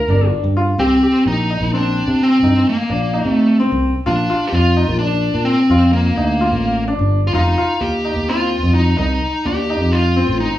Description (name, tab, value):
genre	progressive instrumental, band music in an uneven meter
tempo	128 BPM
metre	7/4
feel	straight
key	C dorian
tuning	A4 = 441 Hz
part	dark smooth lead guitar	melody	0.0-10.6 s	Bb3 to Bb4	-17 LUFS	equal	overdrive
part	bright concert grand piano	arpeggios	0.1-10.5 s	C4 to G4	-21 LUFS	left 2 dB	none
part	fingered electric bass	bass	0.1-10.5 s	F1 to C3	-17 LUFS	equal	none
room	wet large studio reverb, RT60 0.9 s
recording	band playing live in one room, small room ambience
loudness	-14 LUFS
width	side -13 dB against mid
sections	0.8-10.6 A section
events	none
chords	0.0 Gm7; 0.8 Cm7; 4.1 Bbmaj7; 7.3 F7(no3)